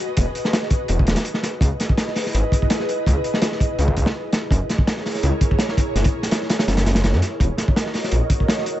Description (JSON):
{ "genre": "drum and bass, jungle", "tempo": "166 BPM", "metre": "4/4", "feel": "straight", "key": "unclear", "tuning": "A4 = 441 Hz", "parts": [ { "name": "ethereal airy pad", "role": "sustained chords", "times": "0.2-8.6 s", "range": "Fb4 to Eb5", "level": "-26 LUFS", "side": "equal", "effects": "ensemble chorus, built-in reverb" }, { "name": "detuned saw bass", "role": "bass", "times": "0.2-8.2 s", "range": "Eb1 to Gb2", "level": "-20 LUFS", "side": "equal", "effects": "none" }, { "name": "crunchy breakbeat drum kit", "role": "drums", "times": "0.2-8.8 s", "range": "hi-hat, kick drum, snare drum", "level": "-20 LUFS", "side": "equal", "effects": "none" } ], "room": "small room ambience", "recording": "nothing above 8.0 kHz", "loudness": "-18 LUFS", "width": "side -13 dB against mid", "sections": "0.0-8.8 A section", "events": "kick drops out 6.7-7.4", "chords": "0.0 Emaj7; 1.6 Dbm7; 4.5 Gb7; 7.4 Ebm7" }